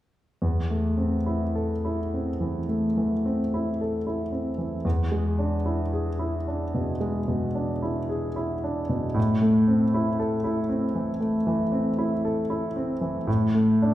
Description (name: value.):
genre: classical, romantic nocturne for solo piano.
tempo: 53-59 BPM.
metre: 4/4.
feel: rubato.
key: A minor.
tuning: A4 = 439 Hz.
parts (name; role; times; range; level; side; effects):
warm concert grand piano; solo; 0.4-13.9 s; E2 to A4; -23 LUFS; equal; none.
room: wet recital hall reverb, RT60 1.3 s.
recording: heard from further back in the room.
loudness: -23 LUFS.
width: side -14 dB against mid.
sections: 0.4-13.9 A section.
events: none.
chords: 0.4 Am/E; 4.8 E7; 9.2 Am; 13.3 D5/A.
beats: | 0.40 1.53 2.66 3.77 | 4.84 5.93 7.01 8.11 | 9.17 10.19 11.21 12.23 | 13.27.